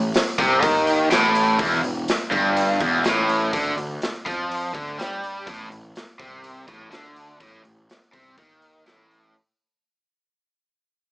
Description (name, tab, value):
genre	blues rock power trio and southern rock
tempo	124 BPM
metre	4/4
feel	straight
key	unclear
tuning	A4 = 440 Hz
part	raw garage guitar	riff	0.0-9.3 s	E2 to G3	-20 LUFS	equal	overdrive
part	fuzz picked electric bass	bass	0.0-9.3 s	E1 to G2	-30 LUFS	equal	overdrive
part	raw garage drum kit	drums	0.1-9.2 s	hi-hat, kick drum, snare drum	-26 LUFS	equal	none
room	light reverb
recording	small speaker sound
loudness	-19 LUFS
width	side -23 dB against mid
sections	0.0-9.3 A section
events	fade-out 0.0-9.3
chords	0.0 Am; 1.6 Em; 3.5 Dm; 5.5 Am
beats	0.14 0.63 1.11 | 1.59 2.08 2.56 3.05 | 3.53 4.02 4.50 4.99 | 5.47 5.96 6.44 6.93 | 7.41 7.89 8.38 8.86